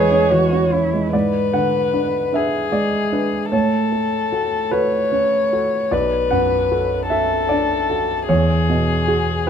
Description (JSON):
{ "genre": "neoclassical piano and strings", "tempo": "50 BPM (dotted quarters)", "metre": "6/8", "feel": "rubato", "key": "unclear", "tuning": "A4 = 440 Hz", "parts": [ { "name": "muted violin", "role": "melody", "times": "0.0-9.5 s", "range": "G#4 to C#5", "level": "-20 LUFS", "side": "left 3 dB", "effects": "none" }, { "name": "muted cello", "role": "second line", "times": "0.0-1.1 s", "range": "E4 to G#4", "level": "-21 LUFS", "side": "right 6 dB", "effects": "none" }, { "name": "warm grand piano", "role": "accompaniment", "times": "0.0-9.5 s", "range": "B1 to G#5", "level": "-19 LUFS", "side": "right 2 dB", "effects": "none" } ], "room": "light reverb", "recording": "minimal, uncompressed stereo recording", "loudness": "-16 LUFS", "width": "side -8 dB against mid", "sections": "0.0-1.1 A section; 1.1-9.5 B section", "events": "none", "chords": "0.0 C#m/E; 1.1 G#dim; 3.5 F#m/A; 5.9 Bm7; 8.3 Eadd9", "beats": "| 1.13 2.34 | 3.52 4.72 | 5.92 7.10 | 8.29 9.47" }